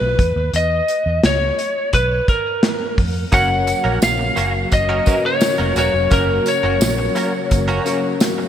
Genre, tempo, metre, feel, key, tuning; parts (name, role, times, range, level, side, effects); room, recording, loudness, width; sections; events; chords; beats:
1980s-style pop; 86 BPM; 4/4; straight; A4 = 439 Hz
lightly driven lead guitar; melody; 0.0-7.8 s; Bb4 to Gb5; -19 LUFS; equal; digital delay
vintage muted fingered electric bass; bass; 0.0-7.8 s; Fb1 to F2; -21 LUFS; equal
modern studio drum kit; drums; 0.2-8.4 s; hi-hat, kick drum, snare drum; -19 LUFS; equal; gated reverb
mellow tine electric piano; accompaniment; 3.3-8.5 s; Db4 to Db5; -24 LUFS; left 5 dB; ensemble chorus
string machine, violas; sustained chords; 3.3-8.5 s; Db3 to Gb4; -26 LUFS; equal; ensemble chorus
direct-recorded clean electric guitar; riff; 3.3-8.4 s; Bb3 to Bb4; -25 LUFS; right 4 dB; ensemble chorus, digital delay
tambourine; percussion; 3.3-8.4 s; -32 LUFS; right 8 dB
moderate lush hall reverb, RT60 3.0 s; bright 1980s-style digital production; -15 LUFS; side -9 dB against mid
0.0-8.5 A section
0.2 E5; 3.3 Gb
| 0.54 1.24 1.93 2.63 | 3.33 4.03 4.72 5.42 | 6.12 6.82 7.51 8.21